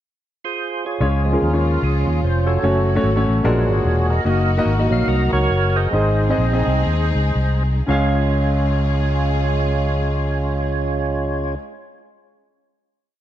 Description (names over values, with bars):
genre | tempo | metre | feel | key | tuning
uptempo gospel | 110-148 BPM | 4/4 | swing 60% on 8ths | Db major | A4 = 440 Hz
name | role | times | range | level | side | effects
percussive tonewheel organ | sustained chords | 0.4-11.6 s | F3 to F5 | -22 LUFS | right 3 dB | slow rotary speaker, overdrive, chorus vibrato
warm baby grand piano | accompaniment | 1.0-11.6 s | Db2 to F5 | -22 LUFS | left 2 dB | none
warm studio string section | sustained chords | 1.0-11.5 s | F3 to Ab4 | -30 LUFS | left 2 dB | none
fingered electric bass | bass | 1.0-11.5 s | Fb1 to Eb2 | -19 LUFS | equal | none
room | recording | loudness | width
light reverb, studio ambience | dark, warm production | -16 LUFS | side -12 dB against mid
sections
0.0-1.0 pickup bar; 1.0-7.9 breakdown; 7.9-12.3 final chord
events
tonewheel organ solo 1.0-7.9; slowing down 4.2-7.9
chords
0.0 Fm; 1.0 Db; 2.6 Gbm; 3.4 Bb7alt; 4.2 Ebm/Gb; 5.9 Ab; 7.9 Db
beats
0.20 0.60 | 1.01 1.41 1.82 2.22 | 2.63 3.03 3.44 3.84 | 4.25 4.65 5.07 5.49 | 5.93 6.38 6.85 7.35 | 7.88 8.43 8.97 9.52 | 10.07 10.61 11.16